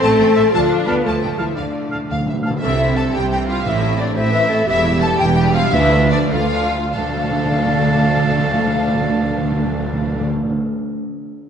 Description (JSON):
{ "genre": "cinematic, heroic adventure film score", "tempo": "92-119 BPM (dotted quarters)", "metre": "6/8", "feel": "straight", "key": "D dorian", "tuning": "A4 = 440 Hz", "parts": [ { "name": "warm symphonic violin section", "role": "melody", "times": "0.0-10.3 s", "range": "D4 to A5", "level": "-26 LUFS", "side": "left 1 dB", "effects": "none" }, { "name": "dark clarinet", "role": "second line", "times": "0.0-10.3 s", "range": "D4 to D5", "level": "-26 LUFS", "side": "left 2 dB", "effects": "none" }, { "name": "warm symphonic violin section", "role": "second line", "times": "0.0-10.3 s", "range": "D5 to B5", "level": "-26 LUFS", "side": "left 2 dB", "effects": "none" }, { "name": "clear symphonic viola section", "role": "accompaniment", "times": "0.0-10.3 s", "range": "E3 to F4", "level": "-26 LUFS", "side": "right 1 dB", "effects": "none" }, { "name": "mellow French horn section", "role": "sustained chords", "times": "0.0-10.3 s", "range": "G3 to B4", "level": "-23 LUFS", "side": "left 4 dB", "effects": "none" }, { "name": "rich symphonic cello section", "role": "bass", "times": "0.0-10.3 s", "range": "D2 to B3", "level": "-23 LUFS", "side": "right 3 dB", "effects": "none" }, { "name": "rich symphonic double bass section", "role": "bass", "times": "0.0-10.3 s", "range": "E1 to D2", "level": "-22 LUFS", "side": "right 4 dB", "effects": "none" }, { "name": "clear oboe", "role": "second line", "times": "0.4-2.5, 6.9-10.3 s", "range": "E5 to A5", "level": "-27 LUFS", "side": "right 2 dB", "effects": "none" }, { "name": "silver concert flute", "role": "second line", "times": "0.4-10.3 s", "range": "D5 to A5", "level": "-23 LUFS", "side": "left 2 dB", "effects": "none" }, { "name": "timpani", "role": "percussion", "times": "1.6-10.6 s", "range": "A2 to D3", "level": "-23 LUFS", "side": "equal", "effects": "none" } ], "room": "wet scoring stage reverb, RT60 1.7 s", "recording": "nothing above 10.8 kHz", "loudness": "-15 LUFS", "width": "side -8 dB against mid", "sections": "0.0-2.6 A section; 2.6-6.9 B section; 6.9-9.5 C section", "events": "timpani fill 1.6-2.6; slowing down 4.2-6.9", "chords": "0.0 Am; 0.5 Dm; 2.6 C; 3.7 Am; 4.7 Em; 5.7 Dm" }